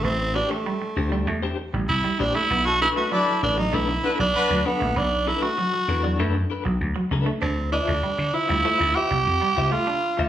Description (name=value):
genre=funk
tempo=98 BPM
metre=4/4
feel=straight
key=unclear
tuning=A4 = 436 Hz
part: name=growling tenor saxophone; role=melody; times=0.0-10.3 s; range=A3 to G4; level=-23 LUFS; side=right 2 dB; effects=none
part: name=electric guitar at the edge of break-up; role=riff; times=0.0-10.2 s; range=F#3 to D4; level=-30 LUFS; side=right 2 dB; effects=spring reverb
part: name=vintage slap bass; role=bass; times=0.0-10.3 s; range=A1 to D3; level=-26 LUFS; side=equal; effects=none
part: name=clean electric guitar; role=accompaniment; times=0.3-10.3 s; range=D4 to F5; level=-30 LUFS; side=left 5 dB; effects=tremolo
part: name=warm horn section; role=second line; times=2.7-4.6 s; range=A3 to D5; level=-26 LUFS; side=left 2 dB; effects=none
room=wet large studio reverb, RT60 1.0 s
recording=band playing live in one room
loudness=-20 LUFS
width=side -11 dB against mid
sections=0.0-7.4 A section; 7.4-10.3 B section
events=tenor saxophone solo 0.0-7.4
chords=0.0 Am11; 2.5 Bm7; 7.4 Dm9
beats=| 0.05 0.66 1.28 1.89 | 2.51 3.12 3.73 4.35 | 4.96 5.58 6.19 6.81 | 7.42 8.04 8.65 9.27 | 9.88